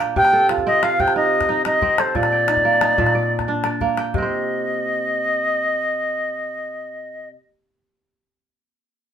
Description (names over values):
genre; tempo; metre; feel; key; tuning
west african traditional, West African string and xylophone music; 120 BPM (dotted quarters); 12/8; straight; C dorian; A4 = 439 Hz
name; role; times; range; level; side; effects
kora; arpeggios; 0.0-7.4 s; Bb2 to A5; -22 LUFS; right 4 dB; none
calabash; percussion; 0.0-4.3 s; none; -26 LUFS; left 4 dB; none
bright reedy wooden flute; melody; 0.2-7.3 s; C5 to G5; -18 LUFS; left 1 dB; none
room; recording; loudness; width
wet studio ambience, RT60 0.5 s; band playing live in one room; -17 LUFS; side -9 dB against mid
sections
0.0-4.1 A section; 4.1-8.1 B section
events
none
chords
0.2 Cm; 2.1 Bb; 4.1 Cm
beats
| 0.16 0.65 1.15 1.65 | 2.15 2.64 3.14 3.64 | 4.14 4.63 5.13 5.63 | 6.13 6.63 7.13